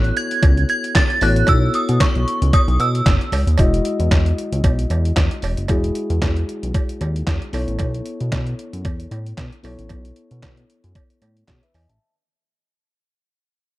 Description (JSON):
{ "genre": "early-eighties boogie funk", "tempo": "114 BPM", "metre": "4/4", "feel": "swing 56% on 16ths", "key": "E major", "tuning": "A4 = 440 Hz", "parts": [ { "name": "synth chime", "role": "melody", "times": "0.0-3.3 s", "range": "C#6 to A6", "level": "-21 LUFS", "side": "right 2 dB", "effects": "ensemble chorus" }, { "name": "mellow tine electric piano", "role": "accompaniment", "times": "0.0-12.1 s", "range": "G#3 to A5", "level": "-26 LUFS", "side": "left 2 dB", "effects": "none" }, { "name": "chorused synth bass", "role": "bass", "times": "0.0-12.0 s", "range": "E1 to B2", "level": "-19 LUFS", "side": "equal", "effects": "none" }, { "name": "detuned 8-bit digital drum machine", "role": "drums", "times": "0.0-12.0 s", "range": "handclaps, hi-hat, kick drum, snare drum", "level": "-19 LUFS", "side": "equal", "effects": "overdrive" }, { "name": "cowbell", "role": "percussion", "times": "0.4-11.9 s", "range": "none", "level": "-29 LUFS", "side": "right 6 dB", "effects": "none" } ], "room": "little or no reverb", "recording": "dark, warm production", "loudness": "-16 LUFS", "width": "side -17 dB against mid", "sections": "0.0-3.6 A section; 3.6-12.0 B section", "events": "fade-out 3.6-12.0", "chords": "0.0 B9sus4; 3.6 Emaj9; 7.5 B9sus4" }